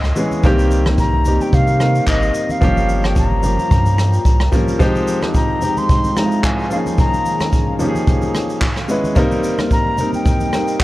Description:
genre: amapiano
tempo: 110 BPM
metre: 4/4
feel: swing 55% on 16ths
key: unclear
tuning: A4 = 440 Hz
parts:
  - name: mellow silver concert flute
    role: melody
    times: 0.0-10.8 s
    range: Eb5 to C6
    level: -22 LUFS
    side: left 1 dB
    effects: ping-pong delay
  - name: glassy FM pad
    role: sustained chords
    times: 0.0-10.8 s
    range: Eb3 to G5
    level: -28 LUFS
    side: right 1 dB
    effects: ensemble chorus, built-in reverb
  - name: warm sub bass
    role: bass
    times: 0.0-4.5 s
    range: G1 to C3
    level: -17 LUFS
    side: equal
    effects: none
  - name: jazz brush drum kit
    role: drums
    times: 0.0-10.8 s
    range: handclaps, kick drum, rim click, shaker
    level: -18 LUFS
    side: equal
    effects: none
  - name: warm concert grand piano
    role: accompaniment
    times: 0.2-10.8 s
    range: Eb3 to Cb5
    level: -19 LUFS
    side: equal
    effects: none
  - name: congas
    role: percussion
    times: 0.3-10.7 s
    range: none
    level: -26 LUFS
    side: equal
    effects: none
room: light reverb, small room ambience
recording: worn, warbling old tape, cassette tape, warbly pitch drift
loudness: -14 LUFS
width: side -17 dB against mid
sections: 0.0-10.8 A section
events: none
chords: 0.4 Cm7; 2.6 Gm7b5; 4.8 Fm9; 6.7 Eb9sus4; 8.6 Dbm7; 9.2 Cm7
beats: | 0.44 0.98 1.53 2.07 | 2.62 3.16 3.71 4.25 | 4.80 5.34 5.89 6.44 | 6.98 7.53 8.07 8.62 | 9.16 9.71 10.25 10.80

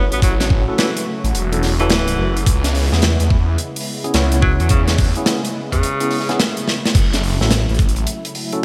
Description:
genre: glitch hop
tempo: 107 BPM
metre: 4/4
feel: swing 63% on 16ths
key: F# minor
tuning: A4 = 438 Hz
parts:
  - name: warm tenor saxophone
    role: melody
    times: 0.0-6.5 s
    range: C#3 to B3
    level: -27 LUFS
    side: equal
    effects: delay
  - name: warm analog pad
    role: sustained chords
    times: 0.0-8.6 s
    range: C#3 to F#4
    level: -31 LUFS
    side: equal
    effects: chorus, sidechain pumping
  - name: bright tine electric piano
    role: stabs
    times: 0.0-8.6 s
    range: B3 to C#5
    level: -27 LUFS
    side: equal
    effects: sidechain pumping, delay
  - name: phased detuned saw bass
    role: bass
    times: 0.0-8.1 s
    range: E1 to E2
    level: -20 LUFS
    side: equal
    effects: phaser
  - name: tight metal drum kit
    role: drums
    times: 0.1-8.6 s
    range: crash cymbal, hi-hat, snare drum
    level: -23 LUFS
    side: equal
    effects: gated reverb
  - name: electronic kick drum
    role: drums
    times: 0.2-7.9 s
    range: none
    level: -18 LUFS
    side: equal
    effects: none
room: light reverb, small room ambience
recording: bright 1980s-style digital production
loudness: -17 LUFS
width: mono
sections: 0.0-8.6 A section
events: drum fill 6.7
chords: 0.0 F#m7; 2.5 C#m7; 7.0 F#m7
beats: | 0.22 0.78 1.34 1.90 | 2.46 3.03 3.59 4.15 | 4.71 5.27 5.83 6.39 | 6.95 7.51 8.07 8.63

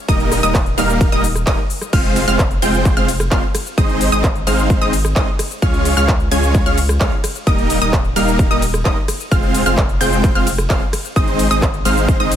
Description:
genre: EDM, festival progressive house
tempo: 130 BPM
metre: 4/4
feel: straight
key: unclear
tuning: A4 = 441 Hz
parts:
  - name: wide unison pluck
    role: arpeggios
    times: 0.1-12.3 s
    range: Eb6 to Ab6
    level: -23 LUFS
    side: right 1 dB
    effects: sidechain pumping, ping-pong delay
  - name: big supersaw lead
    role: riff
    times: 0.1-12.3 s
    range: G3 to Ab5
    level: -18 LUFS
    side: equal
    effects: sidechain pumping, ping-pong delay
  - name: saturated sub bass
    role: bass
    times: 0.1-12.4 s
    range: Eb1 to Db2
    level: -20 LUFS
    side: equal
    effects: sidechain pumping
  - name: big-room dance drum kit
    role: drums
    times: 0.1-12.4 s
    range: crash cymbal, handclaps, hi-hat, ride cymbal, rim click, shaker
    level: -23 LUFS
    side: equal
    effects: overdrive
  - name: electronic kick drum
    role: drums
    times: 0.1-12.2 s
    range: none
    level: -17 LUFS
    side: equal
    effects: overdrive
room: little or no reverb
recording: none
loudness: -13 LUFS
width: side -10 dB against mid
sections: 0.0-1.9 A section; 1.9-12.4 A section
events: drop 0.0-1.9, 1.9-12.4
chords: 0.1 Eb; 1.9 Fm; 3.8 Ab; 5.6 Db; 7.5 Eb; 9.3 Fm; 11.2 Ab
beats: | 0.09 0.55 1.01 1.47 | 1.93 2.39 2.85 3.32 | 3.78 4.24 4.70 5.16 | 5.62 6.08 6.55 7.01 | 7.47 7.93 8.39 8.85 | 9.32 9.78 10.24 10.70 | 11.16 11.62 12.09

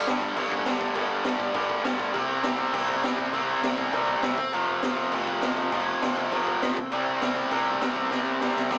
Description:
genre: punk rock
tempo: 201 BPM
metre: 4/4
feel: straight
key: unclear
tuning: A4 = 445 Hz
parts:
  - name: distorted electric guitar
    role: riff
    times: 0.0-8.8 s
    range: F2 to C4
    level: -28 LUFS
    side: equal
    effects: overdrive
  - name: picked electric bass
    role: bass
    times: 0.0-8.8 s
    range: F1 to C2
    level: -51 LUFS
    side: equal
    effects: none
  - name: raw garage drum kit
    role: drums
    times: 0.1-8.8 s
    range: crash cymbal, kick drum, snare drum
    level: -31 LUFS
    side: equal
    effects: none
room: light reverb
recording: rough rehearsal-room recording, small speaker sound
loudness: -26 LUFS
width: mono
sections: 0.0-8.8 A section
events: drum fill 8.1-8.8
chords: 0.0 G5; 2.1 C5; 4.4 F5; 6.8 C5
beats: 0.07 0.37 0.67 | 0.96 1.26 1.55 1.85 | 2.15 2.44 2.74 3.04 | 3.34 3.64 3.93 4.23 | 4.53 4.83 5.13 5.43 | 5.73 6.03 6.32 6.62 | 6.92 7.22 7.52 7.82 | 8.12 8.42 8.71

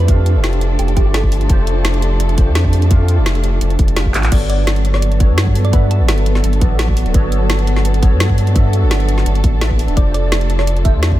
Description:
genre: liquid drum and bass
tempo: 170 BPM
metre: 4/4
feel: straight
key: G lydian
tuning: A4 = 441 Hz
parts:
  - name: thumb-piano-like synth pluck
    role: melody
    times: 0.0-1.5, 4.3-6.4, 10.0-11.0 s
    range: G4 to E5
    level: -26 LUFS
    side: right 2 dB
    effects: chorus, phaser, ping-pong delay
  - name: bright tine electric piano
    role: accompaniment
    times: 0.0-11.2 s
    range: A3 to F5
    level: -23 LUFS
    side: equal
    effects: ensemble chorus, ping-pong delay
  - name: dark studio string section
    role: sustained chords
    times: 0.0-11.2 s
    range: F3 to A4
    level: -25 LUFS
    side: right 1 dB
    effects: sidechain pumping
  - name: warm sub bass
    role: bass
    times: 0.0-11.2 s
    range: D1 to G2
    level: -14 LUFS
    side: equal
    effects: none
  - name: drum and bass drum kit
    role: drums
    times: 0.0-11.1 s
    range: crash cymbal, handclaps, hi-hat, snare drum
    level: -22 LUFS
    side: equal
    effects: none
  - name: electronic kick drum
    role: drums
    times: 0.1-11.2 s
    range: none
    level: -14 LUFS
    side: equal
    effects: none
room: digital ambience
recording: none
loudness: -12 LUFS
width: side -14 dB against mid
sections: 0.0-4.3 A section; 4.3-11.2 A section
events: drop 0.0-4.3, 4.3-11.2; drum fill 4.1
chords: 0.0 F6; 4.3 Gmaj9#11; 10.0 F6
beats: | 0.09 0.44 0.79 1.14 | 1.50 1.85 2.20 2.56 | 2.91 3.26 3.61 3.97 | 4.32 4.67 5.03 5.38 | 5.73 6.08 6.44 6.79 | 7.14 7.50 7.85 8.20 | 8.55 8.91 9.26 9.61 | 9.97 10.32 10.67 11.03

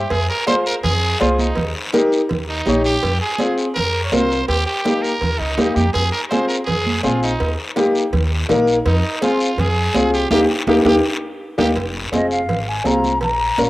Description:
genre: latin, cumbia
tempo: 165 BPM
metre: 4/4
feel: straight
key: F minor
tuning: A4 = 445 Hz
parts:
  - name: growling trumpet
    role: second line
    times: 0.0-11.7 s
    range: Eb4 to Db5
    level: -22 LUFS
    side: right 2 dB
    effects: cassette tape
  - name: upright bass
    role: bass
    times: 0.0-13.7 s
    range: F1 to F2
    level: -22 LUFS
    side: equal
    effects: none
  - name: congas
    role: percussion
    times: 0.1-13.7 s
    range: none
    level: -24 LUFS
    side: right 3 dB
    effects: none
  - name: cowbell and timbales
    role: percussion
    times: 0.1-13.7 s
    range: none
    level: -28 LUFS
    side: right 2 dB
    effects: none
  - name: guiro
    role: percussion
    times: 0.1-13.7 s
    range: none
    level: -28 LUFS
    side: left 2 dB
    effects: none
  - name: clear upright piano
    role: accompaniment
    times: 0.5-13.7 s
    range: Bb3 to Db5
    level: -19 LUFS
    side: left 1 dB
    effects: cassette tape
  - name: mellow concert flute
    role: melody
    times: 12.1-13.7 s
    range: Eb5 to Bb5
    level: -21 LUFS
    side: left 1 dB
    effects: analog delay
room: wet spring reverb, RT60 2.3 s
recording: home recording on cassette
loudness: -15 LUFS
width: side -17 dB against mid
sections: 0.1-11.8 A section; 11.8-13.7 B section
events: trumpet solo 0.1-11.8; band accent 10.3-11.8; drum fill 10.7-11.8; flute solo 11.8-13.7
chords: 0.1 Fm; 1.6 Eb; 3.0 Fm; 4.5 Eb; 5.9 Fm; 7.4 Eb; 8.9 Fm; 10.3 Eb; 11.8 Fm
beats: | 0.12 0.48 0.84 1.21 | 1.57 1.94 2.30 2.67 | 3.03 3.40 3.76 4.12 | 4.49 4.85 5.22 5.58 | 5.95 6.31 6.67 7.04 | 7.40 7.77 8.13 8.50 | 8.86 9.22 9.59 9.95 | 10.32 10.68 11.04 11.41 | 11.77 12.14 12.50 12.87 | 13.23 13.59

